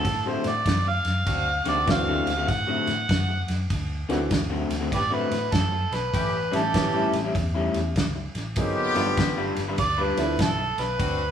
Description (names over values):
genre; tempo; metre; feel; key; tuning
electric blues shuffle; 99 BPM; 4/4; swing 64% on 8ths; D mixolydian; A4 = 439 Hz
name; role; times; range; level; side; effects
overdriven harmonica; melody; 0.0-11.3 s; G4 to F#5; -26 LUFS; right 2 dB; none
electric guitar through a small old amp; riff; 0.0-10.6 s; A2 to B4; -29 LUFS; left 4 dB; none
warm soul drum kit; drums; 0.0-11.2 s; kick drum, ride cymbal, snare drum; -28 LUFS; equal; none
vintage muted fingered electric bass; bass; 0.1-11.3 s; G1 to A2; -29 LUFS; equal; none
brilliant horn section; stabs; 1.3-2.4, 6.1-11.2 s; A3 to G4; -29 LUFS; left 2 dB; none
bright upright piano; accompaniment; 1.9-10.4 s; E3 to G#4; -29 LUFS; right 1 dB; none
room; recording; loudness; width
moderate stone room reverb, RT60 1.1 s; band playing live in one room, small room ambience; -22 LUFS; side -9 dB against mid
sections
0.0-11.3 A section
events
harmonica solo 0.0-11.3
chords
0.0 D7; 6.1 A7; 8.6 G7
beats
0.05 0.66 | 1.27 1.88 2.49 3.10 | 3.70 4.31 4.92 5.53 | 6.14 6.75 7.35 7.96 | 8.57 9.18 9.78 10.39 | 11.00